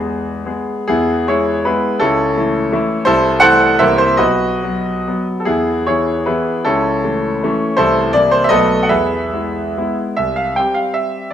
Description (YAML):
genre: classical, romantic triple-time dance for piano with dotted rhythms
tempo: 119-177 BPM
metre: 3/4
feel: rubato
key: E major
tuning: A4 = 440 Hz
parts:
  - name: clear concert grand piano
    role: solo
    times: 0.0-11.3 s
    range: B1 to G5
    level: -13 LUFS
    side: equal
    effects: none
room: moderate recital hall reverb, RT60 1.5 s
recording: none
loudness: -13 LUFS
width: side -10 dB against mid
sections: 0.9-10.2 A section; 10.2-11.3 B section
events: none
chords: 0.0 E; 2.0 A/C#; 3.1 Am/C; 3.8 C7; 4.2 B; 5.5 E; 6.7 A/C#; 7.8 Am/C; 8.1 C7; 8.5 B7; 8.9 E; 10.2 C